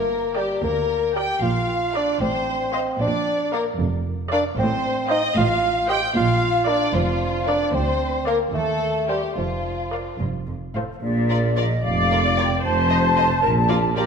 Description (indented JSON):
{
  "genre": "cinematic, playful, whimsical film cue",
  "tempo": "76 BPM (dotted quarters)",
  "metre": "6/8",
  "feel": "straight",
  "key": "Bb major from 4.6 s",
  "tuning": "A4 = 439 Hz",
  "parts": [
    { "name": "rich studio violin section", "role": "second line", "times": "0.0-14.0 s", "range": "F4 to G5", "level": "-27 LUFS", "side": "left 2 dB", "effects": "none" },
    { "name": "warm bassoon", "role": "accompaniment", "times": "0.0-10.2 s", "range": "F3 to G4", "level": "-23 LUFS", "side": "equal", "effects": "none" },
    { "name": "rich studio cello section", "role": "bass", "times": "0.0-14.1 s", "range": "D2 to Bb2", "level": "-27 LUFS", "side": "right 1 dB", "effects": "none" },
    { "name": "rich studio double bass section", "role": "bass", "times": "0.0-14.1 s", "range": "F1 to Eb2", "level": "-27 LUFS", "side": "right 3 dB", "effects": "none" },
    { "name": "rich studio violin section", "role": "melody", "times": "0.4-14.0 s", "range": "D5 to G5", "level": "-33 LUFS", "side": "left 4 dB", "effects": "none" },
    { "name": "warm studio viola section", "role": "accompaniment", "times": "0.4-14.1 s", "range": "F4 to Eb5", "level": "-27 LUFS", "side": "equal", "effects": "none" },
    { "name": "flute section", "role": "second line", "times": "10.8-14.1 s", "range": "Bb4 to A5", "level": "-23 LUFS", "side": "left 1 dB", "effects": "none" },
    { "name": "mellow tuba", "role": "bass", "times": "11.0-14.1 s", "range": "F1 to Bb1", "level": "-26 LUFS", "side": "right 3 dB", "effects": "none" }
  ],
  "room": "wet scoring stage reverb, RT60 1.6 s",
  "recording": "none",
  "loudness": "-19 LUFS",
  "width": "side -6 dB against mid",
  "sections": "0.0-11.0 A section; 11.0-14.1 B section",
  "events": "none",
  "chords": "0.0 Gm; 1.4 Bb; 2.2 F7/A; 3.0 Bb; 4.6 F7/A; 6.2 Bb; 7.7 Bb/D; 8.5 Cm7/Eb; 9.4 Bb/F; 10.2 F; 11.0 Bb; 12.6 F7; 13.4 Bb",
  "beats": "0.63 | 1.43 2.22 | 3.01 3.79 | 4.58 5.37 | 6.16 6.94 | 7.73 8.54 | 9.37 10.21 | 11.03 11.84 | 12.63 13.43"
}